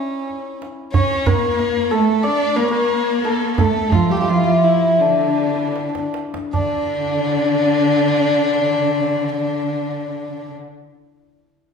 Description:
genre	Persian modal ensemble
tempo	75-93 BPM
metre	4/4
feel	straight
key	D avaz esfahan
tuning	A4 = 437 Hz
part	santur	melody	0.0-11.2 s	C#4 to D5	-21 LUFS	equal	none
part	dark violin	second line	0.0-10.5 s	C#4 to D5	-21 LUFS	left 3 dB	none
part	tombak	percussion	0.3-6.9 s	none	-21 LUFS	right 4 dB	none
part	rich studio cello section	second line	0.9-10.5 s	D3 to D4	-21 LUFS	right 1 dB	none
room	wet large studio reverb, RT60 1.3 s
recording	band playing live in one room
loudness	-16 LUFS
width	side -6 dB against mid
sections	0.0-6.5 A section; 6.5-9.8 B section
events	slowing down 0.9-6.5; drum fill 5.8-6.5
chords	none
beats	0.30 | 0.94 1.59 2.24 2.90 | 3.58 4.28 5.00 5.75 | 6.54 7.34 8.15 8.95

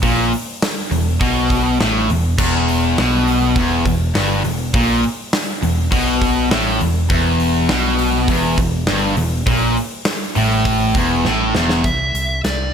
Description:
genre	hard rock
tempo	102 BPM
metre	4/4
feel	straight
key	E minor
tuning	A4 = 440 Hz
part	cranked stack guitar	riff	0.0-11.8 s	E2 to B2	-17 LUFS	left 1 dB	overdrive
part	overdriven picked electric bass	bass	0.0-12.7 s	E1 to C2	-21 LUFS	equal	none
part	big rock drum kit	drums	0.0-12.6 s	crash cymbal, hi-hat, kick drum, snare drum	-21 LUFS	equal	none
part	smooth overdriven lead guitar	melody	11.8-12.7 s	D5 to E5	-20 LUFS	equal	slapback echo
room	light reverb, small room ambience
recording	none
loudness	-14 LUFS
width	side -7 dB against mid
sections	0.0-11.8 A section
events	drum fill 11.2-11.8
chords	0.0 E5; 11.8 C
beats	| 0.03 0.61 1.21 1.79 | 2.38 2.97 3.56 4.15 | 4.74 5.33 5.92 6.51 | 7.10 7.70 8.29 8.88 | 9.47 10.06 10.66 11.25 | 11.85 12.44

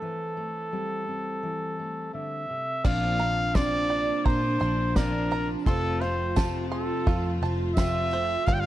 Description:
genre	indie folk with a building arrangement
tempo	85 BPM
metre	4/4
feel	straight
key	F major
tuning	A4 = 440 Hz
part	warm trumpet	melody	0.0-8.7 s	A4 to G5	-29 LUFS	right 1 dB	slapback echo
part	fingerpicked steel-string acoustic guitar	accompaniment	0.0-5.7 s	C3 to C4	-37 LUFS	left 3 dB	none
part	warbly nostalgic lead	second line	2.8-8.7 s	D4 to F4	-32 LUFS	right 2 dB	chorus
part	felt-muted upright piano	accompaniment	2.8-8.7 s	F1 to D5	-43 LUFS	left 4 dB	none
part	picked twelve-string acoustic guitar	accompaniment	2.8-8.7 s	F2 to G4	-35 LUFS	left 5 dB	none
part	clear studio string section	sustained chords	2.8-8.7 s	C3 to F4	-39 LUFS	left 2 dB	none
part	bluegrass banjo	arpeggios	2.8-8.7 s	F4 to C6	-35 LUFS	right 6 dB	none
part	cloth-damped thuddy drum kit	drums	2.8-8.6 s	crash cymbal, kick drum, snare drum	-25 LUFS	equal	none
part	picked electric bass	bass	2.9-8.7 s	F1 to Bb2	-30 LUFS	equal	none
part	tambourine	percussion	3.5-7.9 s	none	-46 LUFS	right 10 dB	none
room	studio ambience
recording	dark, warm production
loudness	-24 LUFS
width	side -14 dB against mid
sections	0.0-2.8 A section; 2.8-8.7 B section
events	none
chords	0.0 C6/E; 2.8 Bbadd9; 5.7 F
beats	| 0.02 0.73 1.44 2.14 | 2.85 3.55 4.26 4.96 | 5.66 6.37 7.07 7.77 | 8.47

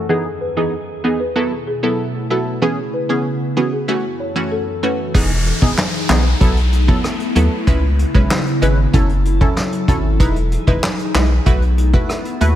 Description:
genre	dancehall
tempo	95 BPM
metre	4/4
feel	straight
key	E major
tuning	A4 = 440 Hz
part	punchy chord stab	accompaniment	0.0-12.6 s	E3 to B4	-20 LUFS	right 2 dB	chorus, low-pass filter
part	glassy FM pad	sustained chords	0.0-12.6 s	B3 to E4	-24 LUFS	left 1 dB	ensemble chorus, built-in reverb, sidechain pumping, low-pass filter
part	folk marimba with medium mallets	melody	0.1-4.9 s	F#4 to C#5	-23 LUFS	left 1 dB	low-pass filter, ping-pong delay
part	saturated sub bass	bass	5.1-12.5 s	E1 to D#2	-16 LUFS	equal	none
part	vintage brush drum kit	drums	5.1-12.6 s	crash cymbal, handclaps, hi-hat, kick drum, rim click, snare drum	-17 LUFS	equal	none
part	downlifter	sound effects	5.1-10.2 s	none	-28 LUFS	equal	none
room	light reverb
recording	none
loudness	-14 LUFS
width	side -12 dB against mid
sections	0.0-5.1 A section; 5.1-12.6 B section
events	filter sweep 0.0-5.1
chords	0.1 Emaj7; 1.4 B7sus4; 2.6 C#m7; 3.9 F#m7; 5.1 Emaj7; 6.4 B7sus4; 7.7 C#m7; 8.9 F#m7; 10.2 Emaj7; 11.5 B7sus4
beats	| 0.09 0.73 1.36 1.99 | 2.62 3.25 3.88 4.51 | 5.15 5.78 6.41 7.04 | 7.67 8.30 8.94 9.57 | 10.20 10.83 11.46 12.09

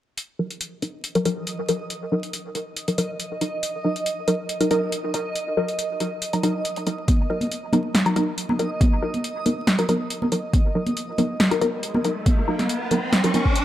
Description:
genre	deep dubstep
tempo	139 BPM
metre	4/4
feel	half-time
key	Eb minor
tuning	A4 = 439 Hz
part	deep house drum kit	drums	0.2-13.6 s	hi-hat, snare drum	-24 LUFS	equal	overdrive
part	backwards swelling texture	texture	1.5-13.6 s	Eb5	-32 LUFS	right 2 dB	built-in reverb
part	filtered dub chord stab	stabs	0.4-13.5 s	Gb3 to Bb4	-24 LUFS	equal	phaser, dub echo
part	electronic kick drum	drums	7.1-13.5 s	none	-19 LUFS	equal	overdrive
part	congas	percussion	7.1-13.4 s	none	-26 LUFS	right 1 dB	none
part	riser	sound effects	11.8-13.6 s	none	-28 LUFS	equal	none
room	moderate echo chamber reverb, RT60 1.9 s, digital ambience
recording	vinyl crackle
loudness	-21 LUFS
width	side -12 dB against mid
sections	0.2-13.6 A section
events	filter sweep on synth stab 0.2-13.6; riser 11.8-13.6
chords	0.2 Ebm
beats	| 0.17 0.61 1.04 1.47 | 1.90 2.33 2.77 3.20 | 3.63 4.06 4.49 4.92 | 5.36 5.79 6.22 6.65 | 7.08 7.51 7.95 8.38 | 8.81 9.24 9.67 10.10 | 10.54 10.97 11.40 11.83 | 12.26 12.69 13.12 13.56

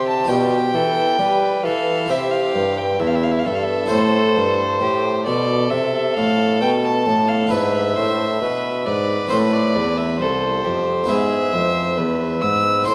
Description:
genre	classical, baroque-style sonata movement with continuo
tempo	67 BPM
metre	4/4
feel	straight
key	unclear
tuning	A4 = 440 Hz
part	warm violin	melody	0.0-12.9 s	C5 to E6	-24 LUFS	equal	none
part	warm violin	second line	0.0-12.9 s	E4 to C5	-27 LUFS	equal	none
part	harpsichord	accompaniment	0.0-12.9 s	C2 to D5	-25 LUFS	equal	none
part	warm bassoon	bass	0.0-12.9 s	C2 to G3	-24 LUFS	equal	none
room	moderate concert hall reverb, RT60 2.2 s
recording	vinyl crackle, lossy compression artefacts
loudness	-19 LUFS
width	mono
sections	0.0-12.9 A section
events	none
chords	0.3 G7/B; 2.1 C; 3.9 Am; 7.5 E7/G#; 9.3 Am; 11.1 E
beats	| 0.29 1.19 2.10 3.00 | 3.91 4.82 5.72 6.62 | 7.51 8.42 9.31 10.20 | 11.09 11.98 12.87

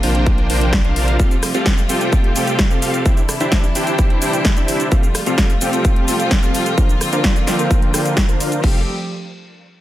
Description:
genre	EDM, festival progressive house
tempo	129 BPM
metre	4/4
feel	straight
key	F major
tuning	A4 = 441 Hz
part	warm chamber string section	sustained chords	0.0-8.9 s	C3 to G4	-22 LUFS	equal	sidechain pumping
part	dense compressed supersaw	riff	0.0-8.8 s	C4 to G5	-21 LUFS	equal	sidechain pumping, low-pass filter, tape echo
part	saturated sub bass	bass	0.0-1.2, 8.6-8.9 s	F1 to Bb1	-19 LUFS	equal	sidechain pumping
part	big-room dance drum kit	drums	0.0-8.7 s	crash cymbal, hi-hat, rim click, shaker, snare drum	-22 LUFS	equal	small room ambience
part	electronic kick drum	drums	0.3-8.7 s	none	-16 LUFS	equal	small room ambience
room	digital ambience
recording	none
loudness	-14 LUFS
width	side -14 dB against mid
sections	0.0-8.6 A section; 8.6-9.8 B section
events	filter sweep on supersaw synth 0.0-8.6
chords	0.0 Bbadd9; 1.2 Fadd9; 3.1 Cadd9; 4.9 Fadd9; 6.8 Bbadd9; 8.6 Fadd9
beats	0.27 0.73 | 1.20 1.66 2.13 2.59 | 3.06 3.52 3.99 4.45 | 4.92 5.38 5.85 6.31 | 6.78 7.24 7.71 8.17 | 8.64

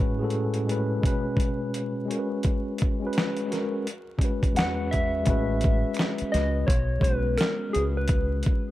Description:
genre	lo-fi hip hop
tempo	85 BPM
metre	4/4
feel	swing 65% on 16ths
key	unclear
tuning	A4 = 438 Hz
part	mellow tine electric piano	accompaniment	0.0-8.7 s	E2 to B4	-28 LUFS	left 1 dB	medium stereo tremolo, low-pass filter
part	dusty soul sampler-style drum kit	drums	0.0-8.7 s	hi-hat, kick drum, snare drum	-26 LUFS	equal	overdrive
part	soft struck synth lead	melody	4.6-8.6 s	G#4 to F#5	-29 LUFS	equal	chorus, low-pass filter
part	deep dub fingered electric bass	bass	5.3-8.4 s	A1 to C#2	-27 LUFS	equal	none
part	finger snap	percussion	6.0-7.6 s	none	-42 LUFS	right 3 dB	none
room	light reverb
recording	vinyl crackle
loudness	-23 LUFS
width	side -15 dB against mid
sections	0.0-5.3 A section; 5.3-8.7 B section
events	none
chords	0.0 Amaj7; 1.0 G#m7/B; 2.1 C#7sus4; 3.9 Bsus2; 4.6 E69; 5.3 Amaj7; 6.7 G#m7/B; 7.7 C#7sus4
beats	0.32 1.03 1.74 | 2.44 3.15 3.85 4.56 | 5.27 5.97 6.68 7.38 | 8.09

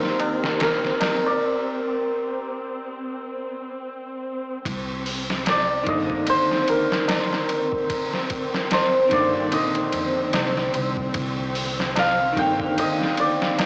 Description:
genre	trip hop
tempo	74 BPM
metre	4/4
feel	swing 57% on 16ths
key	C minor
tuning	A4 = 440 Hz
part	santur	melody	0.0-13.7 s	Bb4 to G5	-26 LUFS	equal	vintage 12-bit sampler grit, tape echo, plate reverb
part	electric guitar at the edge of break-up	accompaniment	0.0-13.7 s	D3 to D4	-30 LUFS	equal	harmonic tremolo, cassette tape, plate reverb
part	muted studio string section	sustained chords	0.0-13.7 s	C4	-32 LUFS	equal	cassette tape
part	trip hop sampler-style drum kit	drums	0.0-13.7 s	hi-hat, kick drum, ride cymbal, snare drum	-30 LUFS	equal	cassette tape
part	backwards swelling texture	texture	0.1-1.4 s	G4	-43 LUFS	equal	none
part	tabla	percussion	0.2-13.7 s	none	-34 LUFS	equal	none
part	upright bass	bass	4.7-13.0 s	G1 to F2	-35 LUFS	equal	tube saturation
room	light reverb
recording	home recording on cassette, small speaker sound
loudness	-23 LUFS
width	mono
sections	0.0-4.7 A section; 4.7-13.7 B section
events	break 1.4-4.7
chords	0.0 Cm7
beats	0.60 | 1.41 2.23 3.04 3.85 | 4.66 5.47 6.28 7.09 | 7.90 8.71 9.52 10.33 | 11.14 11.95 12.77 13.58

